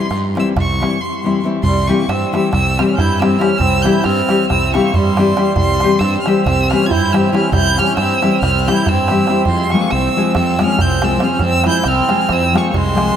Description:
balkan folk, Balkan wedding band; 276 BPM (eighths); 9/8; straight; A4 = 440 Hz
clear violin; melody; 0.0-13.2 s; C6 to Ab6; -20 LUFS; right 2 dB
nylon-string guitar; accompaniment; 0.0-13.2 s; E3 to Ab4; -17 LUFS; left 4 dB
darbuka; percussion; 0.0-13.1 s; -22 LUFS; right 2 dB
fuzz fingered electric bass; bass; 0.1-13.1 s; C2 to G2; -19 LUFS; right 1 dB; overdrive
accordion; second line; 1.7-13.2 s; G3 to F4; -19 LUFS; right 3 dB; light tremolo tuning
wet cathedral reverb, RT60 6.3 s; in a vast, echoing space; -12 LUFS; side -9 dB against mid
0.0-1.6 A section; 1.6-13.2 B section
violin solo 0.0-1.6; break 1.0-1.6
0.0 C; 9.5 Fm

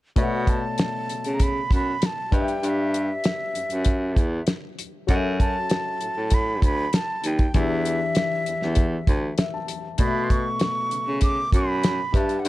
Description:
lush 1970s-style soul; 98 BPM; 4/4; straight; B minor; A4 = 440 Hz
breathy concert flute; melody; 0.2-12.5 s; E5 to D6; -28 LUFS; right 1 dB
warm grand piano; accompaniment; 0.2-12.5 s; B2 to A5; -30 LUFS; left 5 dB
warm baritone saxophone; bass; 0.2-12.5 s; D2 to C#3; -26 LUFS; equal
damped 70s drum kit; drums; 0.2-12.5 s; hi-hat, kick drum, snare drum; -22 LUFS; equal
small room ambience; dark, warm production; -21 LUFS; side -17 dB against mid
0.2-12.5 A section
grand piano fill 9.1-10.0
0.2 Bm11; 2.3 G6; 5.1 F#m7; 7.5 Em7; 10.0 B9sus4

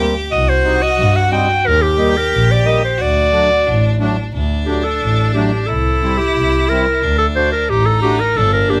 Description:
klezmer; 89 BPM; 2/4; straight; D phrygian dominant; A4 = 440 Hz
bright violin; second line; 0.0-8.8 s; D4 to G4; -24 LUFS; equal
accordion; accompaniment; 0.0-8.8 s; F#3 to G4; -22 LUFS; equal
warm double bass; bass; 0.0-8.8 s; G1 to G2; -20 LUFS; equal
clear clarinet; melody; 0.3-8.8 s; G4 to G5; -18 LUFS; equal
light reverb; close, detailed microphones; -15 LUFS; mono
0.0-4.3 A section; 4.3-8.8 B section
clarinet solo 4.3-8.8
0.3 Cm; 1.7 Eb; 3.0 D; 5.7 C; 7.0 D

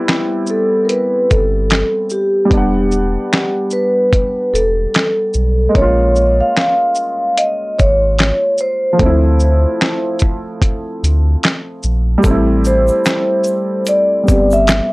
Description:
lo-fi hip hop; 74 BPM; 4/4; swing 60% on 16ths; A4 = 442 Hz
warm upright piano; accompaniment; 0.0-14.9 s; F3 to F#5; -19 LUFS; equal; cassette tape, low-pass filter
dusty soul sampler-style drum kit; drums; 0.1-14.9 s; handclaps, hi-hat, kick drum, shaker, snare drum; -15 LUFS; equal
vibraphone with soft mallets; melody; 0.5-14.9 s; G4 to F5; -15 LUFS; equal; low-pass filter
warm sub bass; bass; 1.3-14.8 s; E1 to D2; -15 LUFS; equal
egg shaker; percussion; 12.2-14.9 s; -34 LUFS; right 1 dB
little or no reverb; dry, gritty hardware recording; -12 LUFS; side -23 dB against mid
0.0-14.9 A section
0.0 Am7; 2.5 Em7; 5.8 Bbm7; 9.0 Dm7; 12.2 Am7

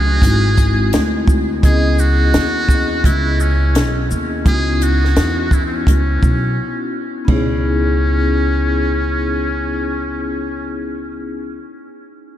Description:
hip hop, jazz-hop; 85 BPM; 4/4; swing 62% on 16ths; C# minor; A4 = 439 Hz
trumpet with metal mute; melody; 0.0-10.9 s; B#3 to G#4; -22 LUFS; right 1 dB; tape echo
vibraphone with medium mallets; accompaniment; 0.0-11.6 s; F#3 to D#5; -20 LUFS; left 3 dB
upright bass; bass; 0.0-11.6 s; G#1 to E2; -18 LUFS; equal
compact cocktail drum kit; drums; 0.2-7.5 s; crash cymbal, hi-hat, kick drum, shaker, snare drum, toms; -17 LUFS; equal
moderate cathedral reverb, RT60 5.8 s; dreamy mix soaked in reverb; -14 LUFS; side -11 dB against mid
0.0-7.3 A section; 7.3-10.1 B section
break 6.6-7.3
0.2 G#7b13; 1.6 C#m7

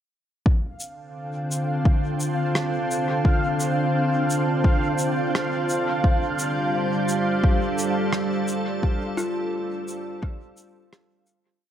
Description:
ambient dub; 86 BPM; 4/4; swing 58% on 16ths; D minor; A4 = 439 Hz
soft additive organ-like pad; sustained chords; 1.2-11.6 s; D3 to C5; -24 LUFS; equal; ensemble chorus, built-in reverb
electronic kick drum; drums; 0.5-10.4 s; -20 LUFS; equal; overdrive
bubbling stepped-filter texture; texture; 0.8-11.6 s; F5; -29 LUFS; equal; chorus, built-in reverb
shaker and rim click; drums; 0.8-11.4 s; -29 LUFS; equal; dub echo
kalimba; arpeggios; 9.2-11.7 s; F4; -30 LUFS; left 2 dB
light reverb, studio ambience; echo-heavy mix; -21 LUFS; side -10 dB against mid
0.5-11.6 groove
fade-out 7.9-11.6
0.5 Dm7; 6.0 G9sus4

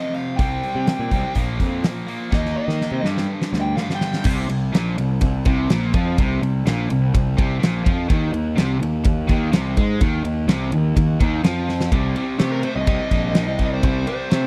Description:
blues rock power trio and southern rock; 125 BPM; 4/4; straight; C minor; A4 = 440 Hz
dark smooth lead guitar; melody; 0.0-4.3, 12.4-14.5 s; G4 to G5; -29 LUFS; equal; overdrive
crunchy overdriven guitar; riff; 0.0-14.5 s; F2 to Eb4; -27 LUFS; equal; spring reverb
huge arena drum kit; drums; 0.1-14.4 s; crash cymbal, hi-hat, kick drum, ride cymbal, snare drum; -23 LUFS; equal
fuzz picked electric bass; bass; 0.4-14.5 s; Bb1 to Eb3; -25 LUFS; equal; overdrive
little or no reverb; dry, close 1970s-style studio recording; -20 LUFS; mono
0.0-4.3 A section; 4.3-11.9 B section; 11.9-14.5 C section
drum fill 2.3-4.3, 11.7; lead electric guitar solo 11.9-14.5
0.4 C5; 1.4 Bb5; 2.3 Eb5; 3.1 G5; 4.3 Bbsus2; 8.1 Cmadd11; 11.9 Cm

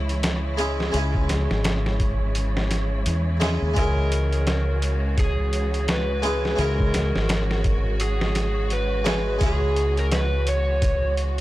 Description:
trip hop; 85 BPM; 4/4; swing 60% on 16ths; C# dorian; A4 = 439 Hz
harpsichord; accompaniment; 0.0-11.4 s; G#3 to G#4; -29 LUFS; equal; tremolo, vintage 12-bit sampler grit, tape echo
clear studio string section; sustained chords; 0.0-11.4 s; C#3 to F#4; -32 LUFS; left 1 dB
deep dub fingered electric bass; bass; 0.0-11.4 s; G#1 to E2; -24 LUFS; equal
wind-like tuned noise texture; texture; 0.0-11.4 s; C#5; -35 LUFS; right 7 dB; built-in reverb
trip hop sampler-style drum kit; drums; 0.1-11.4 s; hi-hat, kick drum, snare drum; -26 LUFS; equal
overdriven slide guitar; melody; 3.8-11.1 s; G#4 to C#5; -28 LUFS; right 1 dB; tape echo
little or no reverb; dry, gritty hardware recording; -20 LUFS; side -16 dB against mid
0.0-11.4 A section
0.0 C#m

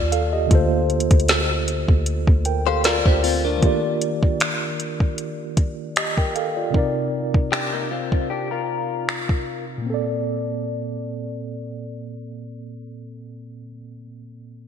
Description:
contemporary R&B; 77 BPM; 4/4; swing 54% on 16ths; Bb major; A4 = 440 Hz
mellow tine electric piano; accompaniment; 0.0-14.7 s; Bb2 to G5; -24 LUFS; right 1 dB; medium stereo tremolo, low-pass filter
soft 808-style bass; bass; 0.0-3.6 s; D2 to Eb2; -22 LUFS; equal
smooth R&B drum kit; drums; 0.1-9.5 s; finger snaps, hi-hat, kick drum, snare drum; -20 LUFS; equal; vintage 12-bit sampler grit, gated reverb
direct-recorded clean electric guitar; arpeggios; 2.7-9.6 s; A3 to C5; -26 LUFS; left 9 dB; lush chorus, low-pass filter, digital delay
moderate lush hall reverb, RT60 2.6 s; bright 1980s-style digital production; -19 LUFS; side -8 dB against mid
0.0-3.6 A section; 3.6-9.9 B section; 9.9-13.0 C section
filter sweep 3.6-9.9
0.0 Ebmaj9; 0.5 Bbmaj7/D; 3.6 Ebmaj9; 6.7 Cm7; 9.9 Bbmaj7

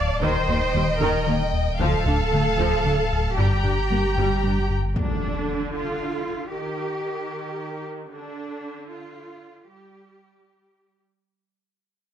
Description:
cinematic, hybrid orchestral and electronic film score; 76 BPM (dotted quarters); 6/8; straight; D phrygian; A4 = 437 Hz
clear chamber violin section; melody; 0.0-4.8 s; G5 to Bb5; -32 LUFS; left 5 dB
warm symphonic violin section; second line; 0.0-4.7 s; Eb5 to G5; -29 LUFS; left 1 dB
round analog bass; riff; 0.0-4.9 s; D2 to G3; -26 LUFS; left 2 dB
punchy sub bass; bass; 0.0-5.0 s; D1 to G1; -28 LUFS; equal
rich symphonic cello section; bass; 0.0-11.0 s; D4 to D5; -28 LUFS; right 2 dB
clear symphonic viola section; accompaniment; 0.2-11.0 s; D3 to D4; -30 LUFS; right 1 dB
rich symphonic double bass section; bass; 0.2-4.5 s; D2 to G2; -29 LUFS; right 3 dB
impact; sound effects; 5.0-6.5 s; -29 LUFS; left 1 dB
moderate scoring stage reverb, RT60 1.6 s; -21 LUFS; side -9 dB against mid
0.0-5.0 A section; 5.0-11.3 B section
fade-out 5.0-11.3; impact 5.0-6.5
0.2 Cm7/Eb; 1.8 Dm; 3.4 Gm; 5.0 Dm; 6.5 Eb; 8.1 Dm; 9.7 N.C.

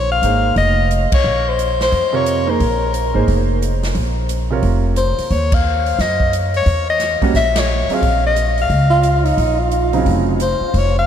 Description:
jazz, small-group swing and bop; 177 BPM; 4/4; swing 63% on 8ths; Bb minor; A4 = 441 Hz
breathy soprano saxophone; melody; 0.0-11.1 s; Bb4 to F5; -18 LUFS; left 3 dB; analog delay
upright bass; bass; 0.0-11.1 s; F1 to Gb2; -18 LUFS; equal
clear baby grand piano; accompaniment; 0.2-5.0, 7.2-10.4 s; C3 to Db5; -23 LUFS; right 7 dB
swinging big-band drum kit; drums; 0.2-10.8 s; hi-hat, kick drum, ride cymbal, snare drum; -23 LUFS; equal
breathy tenor saxophone; second line; 8.9-10.3 s; Eb4 to F4; -19 LUFS; right 3 dB; analog delay
moderate huge ambient reverb, RT60 8.3 s; dreamy mix soaked in reverb; -14 LUFS; side -9 dB against mid
0.0-11.1 A section
band accent 1.1, 5.5, 7.5
0.0 Bbm9; 5.3 Ebmadd9; 6.7 Edim7(no3); 8.0 Bbmadd9

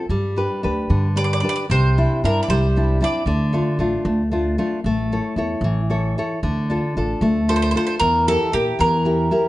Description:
italian folk, Italian serenade; 76 BPM (dotted quarters); 6/8; straight; D minor; A4 = 441 Hz
nylon-string guitar; accompaniment; 0.0-9.5 s; C3 to C#5; -21 LUFS; left 1 dB
upright bass; bass; 0.1-9.3 s; A1 to Bb2; -21 LUFS; equal
bowl-back mandolin; melody; 1.2-3.3, 7.5-9.5 s; G4 to D5; -22 LUFS; right 1 dB
moderate recital hall reverb, RT60 1.4 s; nothing above 10.8 kHz; -17 LUFS; side -16 dB against mid
0.0-9.5 A section
0.1 G; 1.7 Cadd9; 3.3 Dm; 4.8 A; 6.4 Dm; 8.0 Edim

